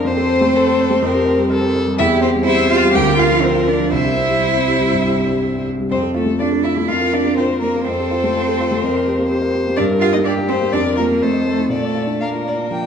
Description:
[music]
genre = quick classical-period movement for piano quartet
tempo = 124 BPM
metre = 4/4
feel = straight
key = F major, Bb major from 9.8 s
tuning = A4 = 440 Hz
[part]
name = warm violin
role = second line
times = 0.0-12.9 s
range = G4 to G5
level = -23 LUFS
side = left 3 dB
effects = none
[part]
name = dark grand piano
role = accompaniment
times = 0.0-12.9 s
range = C2 to Eb5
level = -18 LUFS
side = left 1 dB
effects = none
[part]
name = rich violin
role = melody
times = 0.1-12.9 s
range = A4 to G5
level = -22 LUFS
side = left 6 dB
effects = none
[part]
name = clear cello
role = second line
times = 0.1-12.9 s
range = A3 to G4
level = -20 LUFS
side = right 7 dB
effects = none
[sound]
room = wet recital hall reverb, RT60 1.5 s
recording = dark, warm production, nothing above 10.9 kHz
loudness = -14 LUFS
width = side -7 dB against mid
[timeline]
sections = 0.0-12.9 A section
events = none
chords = 0.1 F; 1.0 Gm7/F; 2.0 C/E; 2.9 Bb/D; 3.9 C; 5.9 F; 6.9 Bb5/F; 7.8 F; 8.8 Gm7/F; 9.8 Gm; 10.7 Bb/F; 11.2 F7; 11.7 Bb

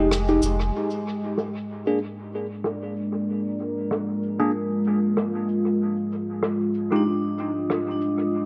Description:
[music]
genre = ambient dub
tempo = 95 BPM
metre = 4/4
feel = swing 57% on 16ths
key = unclear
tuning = A4 = 442 Hz
[part]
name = deep dark ambient pad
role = sustained chords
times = 0.0-8.5 s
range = Ab3 to Eb6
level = -28 LUFS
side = equal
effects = chorus, built-in reverb
[part]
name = tine electric piano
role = stabs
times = 0.0-7.0 s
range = Ab3 to Ab4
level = -28 LUFS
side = equal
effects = phaser, dub echo
[part]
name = warm sub bass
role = bass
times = 0.0-0.7 s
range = F1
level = -27 LUFS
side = equal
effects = none
[part]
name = rim click and cabasa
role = drums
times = 0.1-8.2 s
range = none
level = -33 LUFS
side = equal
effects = low-pass filter on snare, low-pass filter on perc, low-pass filter on room, dub echo
[part]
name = vibraphone with medium mallets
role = arpeggios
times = 7.0-8.5 s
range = D4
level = -29 LUFS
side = equal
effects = tape echo
[sound]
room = moderate echo chamber reverb, RT60 2.3 s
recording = none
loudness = -25 LUFS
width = mono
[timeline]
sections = 0.7-8.5 A section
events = filter sweep on ambient pad 0.7-8.5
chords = 0.0 Fm9; 0.7 Bb7; 5.8 Fm9

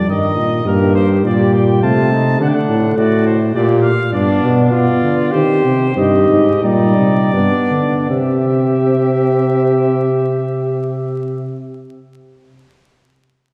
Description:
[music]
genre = classical, imitative canzona for brass ensemble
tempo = 76-106 BPM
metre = 3/4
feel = straight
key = C minor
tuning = A4 = 440 Hz
[part]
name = mellow trumpet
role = melody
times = 0.0-11.6 s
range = Bb4 to A5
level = -26 LUFS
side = equal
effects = none
[part]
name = warm flugelhorn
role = second line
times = 0.0-11.6 s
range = D4 to G4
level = -21 LUFS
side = equal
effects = none
[part]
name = warm euphonium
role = accompaniment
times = 0.0-11.6 s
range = Eb3 to Eb4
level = -20 LUFS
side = equal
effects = none
[part]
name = mellow bass trombone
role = bass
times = 0.0-11.6 s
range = G2 to Eb3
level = -19 LUFS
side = equal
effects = none
[sound]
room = wet concert hall reverb, RT60 2.3 s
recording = heard from further back in the room, vinyl crackle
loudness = -14 LUFS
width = mono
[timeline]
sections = 0.0-8.1 A section; 8.1-12.8 B section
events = slowing down 3.3-8.1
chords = 0.1 Eb/G; 0.7 Gm; 1.8 Adim/C; 2.4 D; 3.5 Gm/Bb; 4.1 G; 5.3 Cm/Eb; 6.0 Cm/G; 7.3 G; 8.1 C

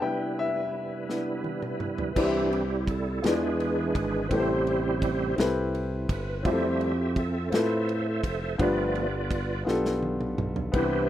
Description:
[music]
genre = slow gospel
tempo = 56 BPM (dotted quarters)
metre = 6/8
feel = straight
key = C major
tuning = A4 = 439 Hz
[part]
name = warm grand piano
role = accompaniment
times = 0.0-11.1 s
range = G2 to G5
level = -29 LUFS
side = left 3 dB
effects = none
[part]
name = bright tonewheel organ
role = sustained chords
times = 0.0-11.1 s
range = C3 to E5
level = -29 LUFS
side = right 2 dB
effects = slow rotary speaker, chorus vibrato
[part]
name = natural country drum kit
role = drums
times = 1.1-10.9 s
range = crash cymbal, kick drum, ride cymbal, snare drum, toms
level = -32 LUFS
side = right 1 dB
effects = none
[part]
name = modern bright fingered electric bass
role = bass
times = 2.2-11.1 s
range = F1 to A2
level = -30 LUFS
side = right 1 dB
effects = none
[sound]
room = light reverb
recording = rough home demo mix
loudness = -25 LUFS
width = side -12 dB against mid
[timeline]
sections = 0.0-2.2 A section; 2.2-11.1 B section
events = grand piano solo 0.0-2.2; break 0.0-2.2; drum fill 1.1-2.2, 9.7-10.7; tonewheel organ solo 2.2-11.1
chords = 0.0 Cmaj7; 3.2 E7b9; 4.3 Am7; 6.5 Fmaj7; 8.6 G7

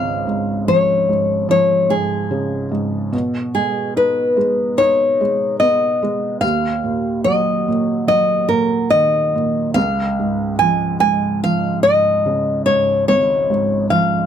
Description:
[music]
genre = acoustic folk-pop ballad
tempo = 72 BPM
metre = 4/4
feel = straight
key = Db major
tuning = A4 = 436 Hz
[part]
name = nylon-string guitar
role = melody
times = 0.0-14.3 s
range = Ab4 to Ab5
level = -16 LUFS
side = left 1 dB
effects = none
[part]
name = felt-muted upright piano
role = accompaniment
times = 0.0-14.3 s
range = Ab1 to Eb4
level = -20 LUFS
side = right 2 dB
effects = none
[sound]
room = moderate booth ambience, RT60 0.2 s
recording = dry, close 1970s-style studio recording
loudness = -15 LUFS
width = side -9 dB against mid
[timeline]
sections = 0.0-14.3 A section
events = none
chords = 0.0 Db; 3.1 Abm/Cb; 6.4 Ebm; 9.8 Db

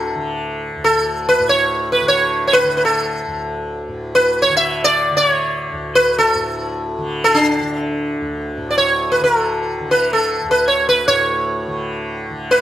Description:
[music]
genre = indian classical, Hindustani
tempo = free time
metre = none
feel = none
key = unclear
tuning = A4 = 440 Hz
[part]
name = sitar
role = melody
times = 0.0-12.6 s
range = D4 to E5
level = -15 LUFS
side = equal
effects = none
[part]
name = tanpura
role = drone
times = 0.0-12.6 s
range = D2 to D3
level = -25 LUFS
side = equal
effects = none
[sound]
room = moderate spring reverb, RT60 2.1 s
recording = none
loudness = -15 LUFS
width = side -12 dB against mid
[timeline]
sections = 0.0-8.6 A section; 8.6-12.6 A section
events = none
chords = none

